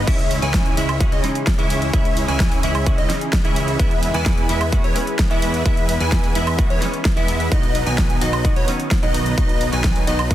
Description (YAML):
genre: EDM, festival progressive house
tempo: 129 BPM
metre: 4/4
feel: straight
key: E major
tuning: A4 = 435 Hz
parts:
  - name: lush unison pad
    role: sustained chords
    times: 0.0-10.3 s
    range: C#3 to B4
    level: -29 LUFS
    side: equal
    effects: chorus, sidechain pumping
  - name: plucky unison lead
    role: arpeggios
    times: 0.0-10.3 s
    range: C#5 to G#5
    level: -27 LUFS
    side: left 1 dB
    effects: phaser, sidechain pumping, tape echo
  - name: supersaw chords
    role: riff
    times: 0.0-10.3 s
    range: F#3 to G#5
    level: -25 LUFS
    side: right 1 dB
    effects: sidechain pumping, tape echo
  - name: fat analog bass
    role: bass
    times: 0.0-10.3 s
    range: B1 to E2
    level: -25 LUFS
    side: equal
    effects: sidechain pumping
  - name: clean electric guitar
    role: accompaniment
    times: 0.1-10.3 s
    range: D#3 to F#4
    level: -28 LUFS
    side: right 1 dB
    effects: ensemble chorus, sidechain pumping, tape echo
  - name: big-room dance drum kit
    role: drums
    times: 0.1-10.3 s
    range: crash cymbal, hi-hat, snare drum, woodblock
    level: -26 LUFS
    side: right 1 dB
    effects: overdrive
  - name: electronic kick drum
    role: drums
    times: 0.1-10.3 s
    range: none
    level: -19 LUFS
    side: equal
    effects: overdrive
room: digital ambience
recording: dense, heavily limited modern master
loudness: -16 LUFS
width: side -13 dB against mid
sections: 0.0-10.3 A section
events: none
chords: 0.1 C#m; 3.8 E; 7.5 B